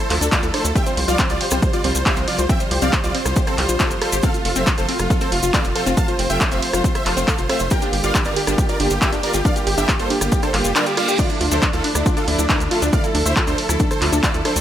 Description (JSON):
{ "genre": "uplifting trance", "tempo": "138 BPM", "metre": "4/4", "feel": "straight", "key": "D minor", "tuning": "A4 = 444 Hz", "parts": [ { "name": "supersaw chords", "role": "melody", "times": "0.0-14.6 s", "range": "D4 to A5", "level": "-23 LUFS", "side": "right 1 dB", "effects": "sidechain pumping, dub echo" }, { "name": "dark studio string section", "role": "sustained chords", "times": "0.1-14.6 s", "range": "C3 to F4", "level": "-26 LUFS", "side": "right 1 dB", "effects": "sidechain pumping" }, { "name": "wide unison pluck", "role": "arpeggios", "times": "0.1-14.5 s", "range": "C4 to G5", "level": "-26 LUFS", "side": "moving between left 5 dB and right 2 dB", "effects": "auto-pan, sidechain pumping, dub echo" }, { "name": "tight sequencer bass", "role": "bass", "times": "0.1-14.6 s", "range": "F1 to D2", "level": "-23 LUFS", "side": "equal", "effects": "sidechain pumping" }, { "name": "punchy analog drum machine", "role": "drums", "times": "0.1-14.6 s", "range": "crash cymbal, handclaps, hi-hat, ride cymbal, rim click", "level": "-23 LUFS", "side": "equal", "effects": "sidechain pumping on hats, sidechain pumping on cymbals" }, { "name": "maracas", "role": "percussion", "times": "0.2-14.6 s", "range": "none", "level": "-28 LUFS", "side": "left 2 dB", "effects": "none" }, { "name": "electronic kick drum", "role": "drums", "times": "0.3-14.3 s", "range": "none", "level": "-20 LUFS", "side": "equal", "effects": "overdrive" }, { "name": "reverse cymbal", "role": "sound effects", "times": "10.7-11.2 s", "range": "none", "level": "-28 LUFS", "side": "right 4 dB", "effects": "none" } ], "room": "little or no reverb", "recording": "none", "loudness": "-16 LUFS", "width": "side -11 dB against mid", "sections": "0.0-14.6 A section", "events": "reverse cymbal 10.7-11.2", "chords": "0.0 Dmadd9; 0.8 Csus4; 4.2 F; 7.7 Gm7; 11.2 Dmadd9", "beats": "0.32 | 0.76 1.19 1.62 2.06 | 2.49 2.93 3.36 3.80 | 4.23 4.67 5.10 5.54 | 5.97 6.41 6.84 7.28 | 7.71 8.15 8.58 9.02 | 9.45 9.89 10.32 10.76 | 11.19 11.62 12.06 12.49 | 12.93 13.36 13.80 14.23" }